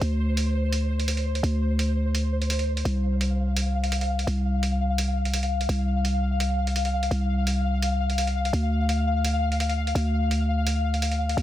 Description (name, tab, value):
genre	half-time drum and bass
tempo	169 BPM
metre	4/4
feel	half-time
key	unclear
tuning	A4 = 441 Hz
part	growling 808-style bass	bass	0.0-11.4 s	C2 to D2	-24 LUFS	equal	none
part	electronic hi-hat	drums	0.0-11.4 s	none	-32 LUFS	right 3 dB	studio ambience
part	pulsing gated texture	texture	0.0-11.4 s	C5 to F5	-30 LUFS	left 3 dB	chorus, built-in reverb
room	light reverb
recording	dense, heavily limited modern master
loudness	-22 LUFS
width	side -13 dB against mid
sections	0.0-11.4 A section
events	none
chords	0.0 Csus2/D; 2.9 Csus4; 8.5 Dm